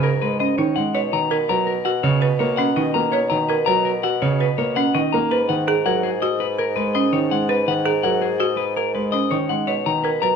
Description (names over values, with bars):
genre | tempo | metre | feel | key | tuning
classical, minimalist pattern music | 165 BPM | 6/4 | straight | B major | A4 = 440 Hz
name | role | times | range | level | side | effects
clean electric guitar | melody | 0.0-10.4 s | G#4 to A#5 | -22 LUFS | left 12 dB | none
warm concert grand piano | accompaniment | 0.0-10.4 s | C#3 to A#3 | -23 LUFS | right 3 dB | none
folk marimba with medium hard mallets | arpeggios | 0.0-10.4 s | C#4 to C#5 | -23 LUFS | right 5 dB | none
warm bassoon | bass | 0.0-10.4 s | G#2 to B2 | -26 LUFS | equal | none
room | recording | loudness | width
moderate recital hall reverb, RT60 1.6 s | close, detailed microphones | -18 LUFS | side -6 dB against mid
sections
0.0-10.4 A section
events
none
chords
0.0 G#m9; 0.9 Bmaj7; 5.3 G#m9; 9.7 Bmaj7